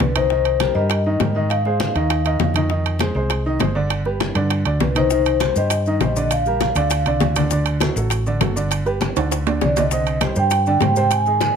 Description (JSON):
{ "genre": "latin, salsa", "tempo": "200 BPM", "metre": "4/4", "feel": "straight", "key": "C minor", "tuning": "A4 = 441 Hz", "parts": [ { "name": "vibraphone with soft mallets", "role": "melody", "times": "0.0-2.5, 4.8-7.3, 9.6-11.6 s", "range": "B4 to Ab5", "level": "-20 LUFS", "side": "left 2 dB", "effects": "none" }, { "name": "clear upright piano", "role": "accompaniment", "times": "0.0-11.5 s", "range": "C3 to Eb5", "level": "-24 LUFS", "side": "right 3 dB", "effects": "none" }, { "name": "hollow-body short-scale fingered electric bass", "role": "bass", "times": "0.0-11.5 s", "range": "G1 to Ab2", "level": "-22 LUFS", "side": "equal", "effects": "none" }, { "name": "bongos", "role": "percussion", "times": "0.0-11.6 s", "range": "none", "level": "-25 LUFS", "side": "left 11 dB", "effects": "none" }, { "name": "congas", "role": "percussion", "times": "0.0-11.6 s", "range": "none", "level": "-27 LUFS", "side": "left 3 dB", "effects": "none" }, { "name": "timbales", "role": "percussion", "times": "0.0-11.6 s", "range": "none", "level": "-26 LUFS", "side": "right 10 dB", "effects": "none" }, { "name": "maracas", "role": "percussion", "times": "5.1-11.6 s", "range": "none", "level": "-31 LUFS", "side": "left 5 dB", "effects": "none" } ], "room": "little or no reverb", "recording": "close, detailed microphones", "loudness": "-16 LUFS", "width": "side -7 dB against mid", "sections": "0.0-11.6 A section", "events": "drum fill 9.2-9.9", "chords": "0.3 Cm7; 1.5 Ab6; 2.7 Fm7; 3.9 G; 5.1 Cm; 6.3 Gm/Bb; 7.5 D; 8.7 G; 9.9 Cmadd9", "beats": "0.00 | 0.30 0.60 0.90 1.20 | 1.50 1.80 2.10 2.40 | 2.70 3.00 3.30 3.60 | 3.90 4.20 4.50 4.80 | 5.11 5.41 5.71 6.01 | 6.31 6.61 6.91 7.21 | 7.51 7.81 8.11 8.41 | 8.71 9.01 9.31 9.61 | 9.91 10.21 10.51 10.81 | 11.11 11.41" }